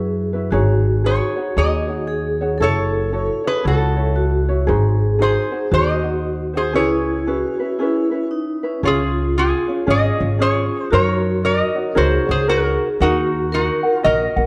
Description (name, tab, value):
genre	Hawaiian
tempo	115 BPM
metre	4/4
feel	swing 62% on 8ths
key	C# minor, Db major from 8.8 s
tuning	A4 = 440 Hz
part	vibraphone with medium hard mallets	second line	0.0-14.5 s	C#4 to Bb4	-26 LUFS	equal	none
part	ukulele	accompaniment	0.0-14.5 s	C#4 to Gb5	-26 LUFS	equal	none
part	upright bass	bass	0.0-14.5 s	F#1 to F#2	-22 LUFS	equal	none
part	lap resonator guitar	melody	1.1-14.5 s	Eb4 to D#5	-23 LUFS	equal	none
room	moderate concert hall reverb, RT60 1.9 s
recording	dark, warm production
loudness	-18 LUFS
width	mono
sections	0.0-8.8 A section; 8.8-14.5 B section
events	none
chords	0.0 Bsus4; 0.5 G#7sus4; 2.6 F#m7; 4.7 G#7; 6.8 C#m7; 8.8 Db; 10.9 Gb6; 13.0 Ebm